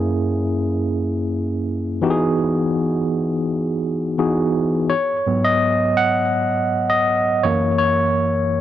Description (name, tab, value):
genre	soul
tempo	83 BPM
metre	4/4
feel	swing 54% on 16ths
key	G# minor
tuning	A4 = 440 Hz
part	barky tine electric piano	solo	0.0-8.6 s	F#2 to F#5	-17 LUFS	equal	auto-pan, analog delay
room	light reverb, digital ambience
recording	none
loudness	-17 LUFS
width	side -12 dB against mid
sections	0.0-4.9 A section; 4.9-8.6 B section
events	tine electric piano solo 4.9-8.6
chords	0.0 F#7; 2.0 Emaj7; 4.9 G#m7; 7.4 F#7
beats	0.57 1.30 | 2.02 2.74 3.47 4.19 | 4.91 5.64 6.36 7.08 | 7.81 8.53